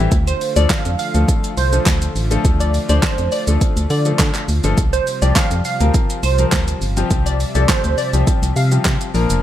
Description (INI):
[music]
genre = dance-pop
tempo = 103 BPM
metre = 4/4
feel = straight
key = unclear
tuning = A4 = 440 Hz
[part]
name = warm concert grand piano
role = accompaniment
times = 0.0-9.4 s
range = E3 to C5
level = -24 LUFS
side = left 5 dB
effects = sidechain pumping
[part]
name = soft supersaw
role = sustained chords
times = 0.0-9.4 s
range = C3 to E5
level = -29 LUFS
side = right 1 dB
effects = sidechain pumping
[part]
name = organ-like FM bass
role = bass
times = 0.0-9.4 s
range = F1 to D3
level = -17 LUFS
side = equal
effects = sidechain pumping
[part]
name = deep house drum kit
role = drums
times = 0.1-9.4 s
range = handclaps, hi-hat, kick drum, shaker, snare drum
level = -19 LUFS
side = equal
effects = none
[part]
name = glassy wavetable pluck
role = melody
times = 0.3-8.7 s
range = C5 to F5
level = -22 LUFS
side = right 2 dB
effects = chorus, sidechain pumping
[sound]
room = light reverb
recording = none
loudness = -14 LUFS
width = side -12 dB against mid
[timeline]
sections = 0.0-9.4 A section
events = none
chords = 0.1 Dm; 4.8 Fsus2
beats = | 0.12 0.70 1.28 1.86 | 2.45 3.03 3.61 4.19 | 4.78 5.36 5.94 6.52 | 7.11 7.69 8.27 8.85